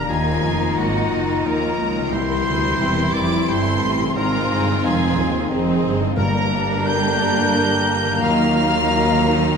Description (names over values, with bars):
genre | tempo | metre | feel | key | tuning
cinematic | 89 BPM | 3/4 | rubato | unclear | A4 = 440 Hz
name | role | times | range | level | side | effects
rich symphonic violin section | melody | 0.0-9.6 s | Gb5 to G6 | -26 LUFS | left 2 dB | none
clear oboe | second line | 0.0-9.6 s | Gb4 to G5 | -27 LUFS | equal | none
small flute group | second line | 0.0-9.6 s | Bb5 to C6 | -27 LUFS | left 3 dB | none
warm clarinet | second line | 0.0-9.6 s | D4 to F4 | -28 LUFS | left 2 dB | none
warm symphonic violin section | second line | 0.0-9.6 s | D4 to C5 | -26 LUFS | left 1 dB | none
felt-muted upright piano | accompaniment | 0.0-9.6 s | G1 to Ab4 | -27 LUFS | left 1 dB | none
rich symphonic viola section | accompaniment | 0.0-9.6 s | Eb3 to Ab4 | -26 LUFS | right 3 dB | none
mellow French horn section | sustained chords | 0.0-9.6 s | D3 to Eb4 | -26 LUFS | left 3 dB | none
concert harp | arpeggios | 0.0-9.6 s | G2 to Ab4 | -30 LUFS | left 9 dB | none
rich studio cello section | bass | 0.0-9.6 s | C2 to Eb3 | -26 LUFS | right 4 dB | none
rich symphonic double bass section | bass | 0.0-9.6 s | E1 to Eb2 | -26 LUFS | right 5 dB | none
timpani | percussion | 6.2-7.2 s | G2 | -29 LUFS | equal | none
room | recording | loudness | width
wet scoring stage reverb, RT60 1.6 s | none | -16 LUFS | side -6 dB against mid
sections
0.0-9.6 A section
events
none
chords
0.1 Ebmadd9; 2.1 C; 4.2 Ab; 6.2 Gm; 8.2 Ebmadd9